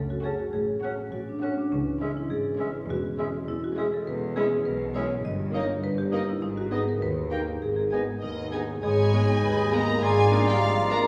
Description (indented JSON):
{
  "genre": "cinematic, playful, whimsical film cue",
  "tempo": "102 BPM",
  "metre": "2/4",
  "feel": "straight",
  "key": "G# minor from 4.1 s",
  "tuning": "A4 = 440 Hz",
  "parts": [
    { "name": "marimba with medium hard mallets", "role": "melody", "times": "0.0-11.1 s", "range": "C#4 to D#5", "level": "-32 LUFS", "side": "equal", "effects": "none" },
    { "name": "mellow French horn section", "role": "sustained chords", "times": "0.0-11.1 s", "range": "D#3 to G#4", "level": "-35 LUFS", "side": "equal", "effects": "none" },
    { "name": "concert harp", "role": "arpeggios", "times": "0.0-11.1 s", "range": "F#2 to D#5", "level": "-37 LUFS", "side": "equal", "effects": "none" },
    { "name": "clear studio double bass section", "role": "bass", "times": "0.0-11.1 s", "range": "E1 to D#2", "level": "-37 LUFS", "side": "equal", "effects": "none" },
    { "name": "rich chamber cello section", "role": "bass", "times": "0.0-11.1 s", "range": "C#2 to B2", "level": "-35 LUFS", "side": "equal", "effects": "none" },
    { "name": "warm studio violin section", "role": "melody", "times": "0.2-11.0 s", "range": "C#5 to A#5", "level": "-36 LUFS", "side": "equal", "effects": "none" },
    { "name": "bright clarinet", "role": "second line", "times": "0.2-11.1 s", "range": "C#4 to E#4", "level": "-39 LUFS", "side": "equal", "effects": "none" },
    { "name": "clear oboe", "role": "second line", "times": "0.2-11.1 s", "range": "D5 to A5", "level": "-40 LUFS", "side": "equal", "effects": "none" },
    { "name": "rich chamber violin section", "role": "second line", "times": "0.2-11.1 s", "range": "D#4 to E#5", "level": "-39 LUFS", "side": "equal", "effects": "none" },
    { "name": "rich chamber viola section", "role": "accompaniment", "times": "0.2-11.0 s", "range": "G#3 to D4", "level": "-38 LUFS", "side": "equal", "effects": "none" },
    { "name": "warm bassoon", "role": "accompaniment", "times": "0.3-11.1 s", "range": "F#3 to B3", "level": "-38 LUFS", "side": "equal", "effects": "none" },
    { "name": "flute section", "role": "second line", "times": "8.8-11.1 s", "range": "A#5 to B5", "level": "-34 LUFS", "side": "equal", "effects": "none" }
  ],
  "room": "wet recital hall reverb, RT60 1.6 s",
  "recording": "heard from further back in the room, studio ambience",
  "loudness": "-26 LUFS",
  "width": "mono",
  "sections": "0.0-8.8 A section; 8.8-11.1 B section",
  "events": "none",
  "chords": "0.0 F#m; 0.5 F#m/A; 1.7 C#m; 2.9 C#m/E; 4.1 E6; 5.2 D#/G; 6.4 G#m; 7.0 D#; 7.6 G#m; 10.0 A#7/G#"
}